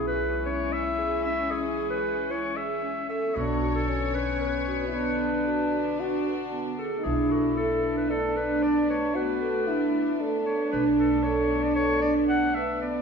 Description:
contemporary instrumental, chamber music in an uneven meter; 114 BPM; 7/4; straight; B dorian; A4 = 444 Hz
warm clarinet; melody; 0.0-13.0 s; F#4 to F#5; -30 LUFS; left 2 dB
warm French horn; second line; 0.0-13.0 s; C#4 to F#4; -29 LUFS; left 2 dB
warm studio string section; sustained chords; 0.0-13.0 s; D3 to C#5; -35 LUFS; left 1 dB
vibraphone with soft mallets; arpeggios; 0.0-13.0 s; B3 to B4; -28 LUFS; right 2 dB
upright bass; bass; 0.0-13.0 s; B1; -35 LUFS; equal
celesta; texture; 7.3-7.8 s; A4; -38 LUFS; left 2 dB
wet scoring stage reverb, RT60 1.7 s; minimal, uncompressed stereo recording; -24 LUFS; side -6 dB against mid
0.0-7.0 A section; 7.0-13.0 B section
0.0 C#m/B; 3.4 Bmadd9; 7.0 Bm7

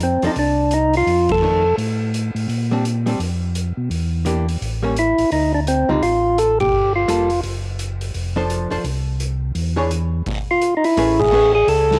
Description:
soul jazz organ trio; 170 BPM; 4/4; swing 62% on 8ths; F major; A4 = 440 Hz
percussive tonewheel organ; melody; 0.0-1.8, 5.0-7.4, 10.5-12.0 s; C4 to A4; -18 LUFS; equal; overdrive, stopped rotary speaker
mellow tonewheel organ; bass; 0.0-12.0 s; F1 to B2; -24 LUFS; equal; overdrive, chorus vibrato, slow rotary speaker
vintage drum kit; drums; 0.0-12.0 s; crash cymbal, hi-hat, kick drum, ride cymbal, snare drum; -32 LUFS; equal; cassette tape
archtop guitar, miked and amplified; accompaniment; 0.2-11.5 s; D3 to C#5; -26 LUFS; equal; cassette tape
moderate spring reverb, RT60 2.0 s, studio reverb; home recording on cassette; -19 LUFS; mono
0.0-11.0 A section; 11.0-12.0 B section
band accent 1.2, 6.6, 11.2
0.0 F6; 2.5 Bb69; 3.9 Em7b5; 4.6 A7b9; 5.3 Dm7; 6.7 Gm9; 7.4 N.C.; 8.1 F6; 9.6 N.C.; 11.0 Amaj9

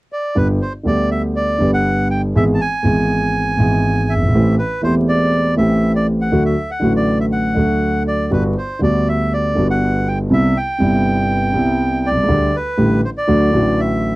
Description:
tango; 121 BPM; 4/4; rubato; G major; A4 = 441 Hz
bandoneon; melody; 0.1-14.2 s; B4 to A5; -20 LUFS; right 1 dB
dark concert grand piano; accompaniment; 0.4-14.2 s; E1 to G#4; -15 LUFS; equal
light reverb; dry, close 1970s-style studio recording, vinyl crackle; -14 LUFS; side -19 dB against mid
0.4-14.2 A section
0.4 G; 2.4 E/G#; 4.3 Am7; 6.3 D; 8.3 Gmaj7; 10.3 Cmaj7; 12.3 Dsus4; 13.3 D

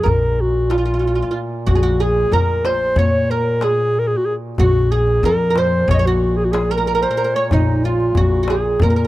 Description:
Turkish makam ensemble; 185 BPM (eighths); 9/8; straight; Bb makam nihavent; A4 = 440 Hz
mellow clarinet; melody; 0.0-9.1 s; Eb4 to Eb5; -18 LUFS; left 1 dB
oud; second line; 0.0-9.1 s; Eb4 to Db5; -23 LUFS; right 4 dB
mellow duduk; drone; 0.0-9.1 s; Bb2; -28 LUFS; right 1 dB; stereo widening
upright bass; bass; 0.1-9.1 s; Bb1 to Bb2; -20 LUFS; equal
darbuka; percussion; 0.1-9.0 s; -20 LUFS; left 1 dB
small room ambience; dry, close 1970s-style studio recording; -15 LUFS; side -16 dB against mid
0.0-9.1 A section

